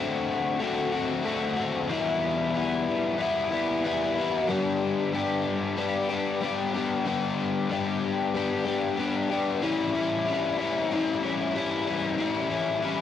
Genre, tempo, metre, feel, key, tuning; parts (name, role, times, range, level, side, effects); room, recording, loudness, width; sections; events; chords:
rock; 93 BPM; 4/4; straight; A4 = 440 Hz
overdriven electric guitar; solo; 0.0-13.0 s; E2 to G4; -25 LUFS; left 3 dB; wide subtle chorus, cassette tape
moderate small room reverb, RT60 0.5 s; home recording on cassette; -25 LUFS; side -10 dB against mid
0.0-9.6 A section; 9.6-13.0 B section
0.0 D7; 1.9 Em; 4.5 G; 9.6 A7